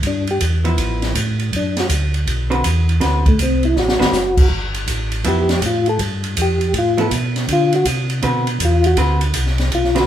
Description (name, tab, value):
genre	soul jazz organ trio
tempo	161 BPM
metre	4/4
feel	swing 65% on 8ths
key	D mixolydian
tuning	A4 = 436 Hz
part	mellow tonewheel organ	bass	0.0-10.1 s	F#1 to D3	-19 LUFS	equal	slow rotary speaker
part	open jazz drum kit	drums	0.0-10.1 s	crash cymbal, hi-hat, kick drum, ride cymbal, snare drum	-21 LUFS	equal	none
part	percussive tonewheel organ	melody	0.1-10.1 s	A3 to A4	-18 LUFS	left 1 dB	slow rotary speaker, chorus vibrato
part	vintage hollow-body jazz guitar	accompaniment	0.6-10.1 s	D3 to B4	-22 LUFS	right 1 dB	none
room	moderate large studio reverb, RT60 1.1 s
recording	band playing live in one room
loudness	-15 LUFS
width	side -10 dB against mid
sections	0.0-10.1 A section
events	tonewheel organ solo 0.0-10.1; drum fill 3.8-4.1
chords	0.0 G13; 1.5 D13; 4.5 G9; 7.5 D13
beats	| 0.03 0.41 0.78 1.15 | 1.53 1.90 2.27 2.65 | 3.02 3.39 3.76 4.14 | 4.51 4.88 5.25 5.62 | 6.00 6.37 6.74 7.11 | 7.49 7.86 8.23 8.60 | 8.97 9.34 9.72